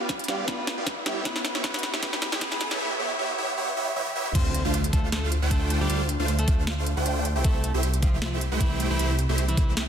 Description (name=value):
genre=future bass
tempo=155 BPM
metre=4/4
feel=swing 54% on 16ths, half-time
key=D dorian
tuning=A4 = 436 Hz
part: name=soft round pluck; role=accompaniment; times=0.0-2.8 s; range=A3 to F4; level=-41 LUFS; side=left 2 dB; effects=none
part: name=supersaw chords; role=riff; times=0.0-9.9 s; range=A3 to G5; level=-28 LUFS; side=right 2 dB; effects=phaser, sidechain pumping, low-pass filter
part: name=wide detuned saw bass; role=bass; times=0.0-9.9 s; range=A1 to D2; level=-28 LUFS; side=equal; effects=chorus, sidechain pumping, high-pass filter
part: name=riser and impact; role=sound effects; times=0.0-5.9 s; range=none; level=-35 LUFS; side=equal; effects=none
part: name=electronic kick drum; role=drums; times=0.1-9.7 s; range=none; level=-24 LUFS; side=equal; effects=overdrive
part: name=trap drum kit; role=drums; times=0.1-9.9 s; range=crash cymbal, hi-hat, snare drum, toms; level=-30 LUFS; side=equal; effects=overdrive
part: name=electric guitar at the edge of break-up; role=melody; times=0.3-9.7 s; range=E3 to C5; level=-35 LUFS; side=left 1 dB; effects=sidechain pumping, tape echo
room=light reverb, digital ambience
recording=dense, heavily limited modern master, high-pass filter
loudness=-23 LUFS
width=side -8 dB against mid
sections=0.0-4.3 A section; 4.3-9.9 B section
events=build-up 0.0-4.3; drum fill 0.0-2.8, 4.0-4.3; riser 0.0-2.8; drop 4.3-9.9; impact 4.3-5.9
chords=0.0 G7/B; 1.1 A7; 4.3 Dm7; 7.3 C6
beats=0.09 0.48 0.86 | 1.25 1.64 2.03 2.41 | 2.80 3.19 3.58 3.96 | 4.35 4.74 5.12 5.51 | 5.90 6.29 6.67 7.06 | 7.45 7.83 8.22 8.61 | 8.99 9.38 9.77